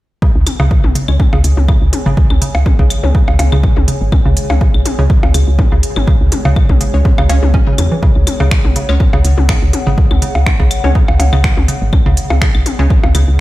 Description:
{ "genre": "minimal techno", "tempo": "123 BPM", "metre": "4/4", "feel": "swing 54% on 16ths", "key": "unclear", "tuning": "A4 = 440 Hz", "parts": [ { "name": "hollow square pluck", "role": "riff", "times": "0.2-13.2 s", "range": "C#3 to C#4", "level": "-21 LUFS", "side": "right 1 dB", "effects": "chorus, sidechain pumping, tape echo" }, { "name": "electronic kick drum", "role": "drums", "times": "0.2-13.0 s", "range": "none", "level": "-13 LUFS", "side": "equal", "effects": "none" }, { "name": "swarming drone", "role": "texture", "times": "1.1-13.4 s", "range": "G#3 to G#4", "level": "-29 LUFS", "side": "right 2 dB", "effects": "built-in reverb, sidechain pumping" }, { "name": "warbly tape-like pad", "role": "texture", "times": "0.9-13.4 s", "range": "G#4 to G#5", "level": "-26 LUFS", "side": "left 1 dB", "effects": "chorus, built-in reverb, sidechain pumping" }, { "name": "woody FM bass", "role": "bass", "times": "0.4-13.4 s", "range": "G#1 to E2", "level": "-12 LUFS", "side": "equal", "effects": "tube saturation, sidechain pumping" }, { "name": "techno drum kit", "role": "drums", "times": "0.5-13.3 s", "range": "finger snaps, hi-hat", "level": "-22 LUFS", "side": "right 1 dB", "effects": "none" }, { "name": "electronic toms, claves and percussion blips", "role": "percussion", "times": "0.5-13.3 s", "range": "none", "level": "-21 LUFS", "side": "left 3 dB", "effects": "ping-pong delay" }, { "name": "wavetable chord stab", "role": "stabs", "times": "1.1-12.9 s", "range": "G#3 to C#5", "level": "-25 LUFS", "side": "left 1 dB", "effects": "vintage 12-bit sampler grit, ping-pong delay" } ], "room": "digital ambience", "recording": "played on a big sound system in a bare room, stone room reverb", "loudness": "-9 LUFS", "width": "side -17 dB against mid", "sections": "0.2-13.4 A section", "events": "none", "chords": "0.2 C#5" }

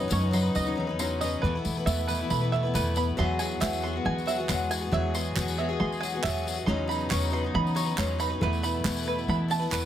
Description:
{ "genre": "indie folk with a building arrangement", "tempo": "137 BPM", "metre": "4/4", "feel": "straight", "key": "E major", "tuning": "A4 = 440 Hz", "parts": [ { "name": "fingerpicked steel-string acoustic guitar", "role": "accompaniment", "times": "0.0-4.9 s", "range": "E2 to A4", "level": "-34 LUFS", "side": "left 1 dB", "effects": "none" }, { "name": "picked acoustic archtop guitar", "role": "accompaniment", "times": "0.0-9.9 s", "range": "E3 to B4", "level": "-32 LUFS", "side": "left 6 dB", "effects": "none" }, { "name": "dark chamber string section", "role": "sustained chords", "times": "0.0-9.9 s", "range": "B2 to G#4", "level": "-36 LUFS", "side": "left 2 dB", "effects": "none" }, { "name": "bluegrass banjo", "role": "arpeggios", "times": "0.0-9.9 s", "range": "B4 to C6", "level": "-32 LUFS", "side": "right 6 dB", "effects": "none" }, { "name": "upright bass", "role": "bass", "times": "0.0-9.9 s", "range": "D#2 to E3", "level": "-29 LUFS", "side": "equal", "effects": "none" }, { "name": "tambourine", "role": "percussion", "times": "0.1-9.8 s", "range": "none", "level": "-38 LUFS", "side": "left 8 dB", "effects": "none" }, { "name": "dark upright piano", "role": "accompaniment", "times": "3.2-9.9 s", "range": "E2 to E5", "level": "-37 LUFS", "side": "right 4 dB", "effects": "none" }, { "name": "group handclap", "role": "percussion", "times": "3.6-9.8 s", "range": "none", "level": "-35 LUFS", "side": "right 8 dB", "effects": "none" } ], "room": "light reverb", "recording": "none", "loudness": "-25 LUFS", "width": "side -10 dB against mid", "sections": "0.0-3.2 A section; 3.2-9.9 B section", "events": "none", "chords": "0.0 Badd9/E; 1.4 Asus2/E; 3.2 Eadd9; 6.7 Badd9/E; 8.4 Asus2/E" }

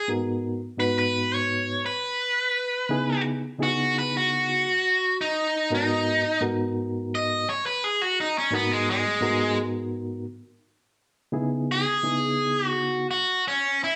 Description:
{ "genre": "blues", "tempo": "85 BPM", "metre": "4/4", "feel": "straight", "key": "G# minor", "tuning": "A4 = 440 Hz", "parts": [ { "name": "overdriven electric guitar", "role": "melody", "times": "0.0-14.0 s", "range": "G#3 to D#5", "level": "-26 LUFS", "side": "equal", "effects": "none" }, { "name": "reed electric piano", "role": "accompaniment", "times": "0.1-13.1 s", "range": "G#2 to B4", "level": "-30 LUFS", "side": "equal", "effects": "overdrive, fast tremolo" } ], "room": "wet large studio reverb, RT60 0.9 s", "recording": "band playing live in one room", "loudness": "-25 LUFS", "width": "mono", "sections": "0.1-14.0 A section", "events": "overdriven electric guitar solo 0.1-14.0", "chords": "0.1 G#m9; 2.9 C#m9; 5.7 G#m9; 11.3 C#m9" }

